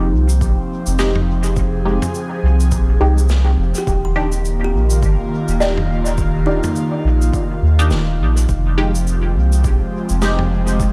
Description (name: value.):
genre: ambient dub.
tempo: 104 BPM.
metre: 4/4.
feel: swing 58% on 16ths.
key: F minor.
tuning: A4 = 440 Hz.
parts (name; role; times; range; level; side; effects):
airy breathy pad; sustained chords; 0.0-10.9 s; Eb3 to Ab4; -25 LUFS; equal; chorus, phaser.
kalimba; arpeggios; 0.0-8.4 s; Eb4 to C6; -31 LUFS; equal; tape echo.
soft dub sub bass; bass; 0.0-10.9 s; Eb1 to Eb2; -18 LUFS; equal; none.
loose indie drum kit; drums; 0.3-10.9 s; shaker, snare drum, toms; -30 LUFS; equal; dub echo.
electronic kick drum; drums; 0.4-10.9 s; none; -25 LUFS; equal; overdrive.
filtered dub chord stab; stabs; 1.0-10.4 s; Ab3 to G4; -26 LUFS; equal; phaser, dub echo.
room: light reverb, small room ambience.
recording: none.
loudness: -17 LUFS.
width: mono.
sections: 0.0-10.9 A section.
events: none.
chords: 0.0 Fm9; 3.9 Ebmaj7; 8.5 Fm9.